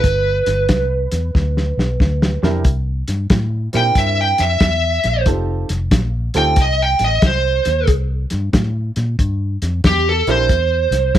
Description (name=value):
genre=electric blues shuffle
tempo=92 BPM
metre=4/4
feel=swing 65% on 8ths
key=unclear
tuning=A4 = 442 Hz
part: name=lead guitar through a small cranked amp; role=melody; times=0.0-11.2 s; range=G4 to G5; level=-17 LUFS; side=right 2 dB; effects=overdrive, plate reverb
part: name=vintage muted fingered electric bass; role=bass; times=0.0-11.2 s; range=F1 to Bb2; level=-19 LUFS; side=equal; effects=none
part: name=warm soul drum kit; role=drums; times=0.0-11.2 s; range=hi-hat, kick drum, snare drum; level=-16 LUFS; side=equal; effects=none
part: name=warm upright piano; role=accompaniment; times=2.4-10.5 s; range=C3 to Bb4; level=-23 LUFS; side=right 4 dB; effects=none
room=light reverb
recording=none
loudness=-14 LUFS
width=side -11 dB against mid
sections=0.0-2.7 A section; 2.7-11.2 B section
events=drum fill 1.3-2.7; lead electric guitar solo 2.7-11.2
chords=0.0 G; 2.7 C9; 5.3 F9; 7.9 C7